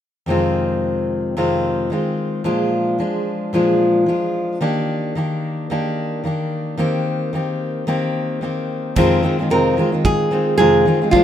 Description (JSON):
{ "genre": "acoustic pop", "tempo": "111 BPM", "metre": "4/4", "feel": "swing 60% on 16ths", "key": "unclear", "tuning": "A4 = 440 Hz", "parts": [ { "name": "fingerpicked steel-string acoustic guitar", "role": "accompaniment", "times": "0.3-11.2 s", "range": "F2 to G4", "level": "-17 LUFS", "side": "left 1 dB", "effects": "none" }, { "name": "natural country drum kit", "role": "drums", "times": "9.0-11.2 s", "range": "crash cymbal, kick drum", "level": "-21 LUFS", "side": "right 3 dB", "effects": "none" }, { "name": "nylon-string guitar", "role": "melody", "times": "9.5-11.2 s", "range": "F4 to Bb4", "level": "-16 LUFS", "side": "right 1 dB", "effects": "none" } ], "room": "light reverb", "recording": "minimal, uncompressed stereo recording", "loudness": "-17 LUFS", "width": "side -10 dB against mid", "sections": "0.3-9.0 A section; 9.0-11.2 B section", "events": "none", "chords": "0.3 Fm7; 2.5 Bb7; 4.6 Ebmaj7; 6.8 Cm7/Eb; 9.0 Fm7", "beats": "| 0.28 0.82 1.37 1.91 | 2.45 2.99 3.54 4.08 | 4.62 5.16 5.71 6.25 | 6.79 7.33 7.88 8.42 | 8.96 9.50 10.05 10.59 | 11.13" }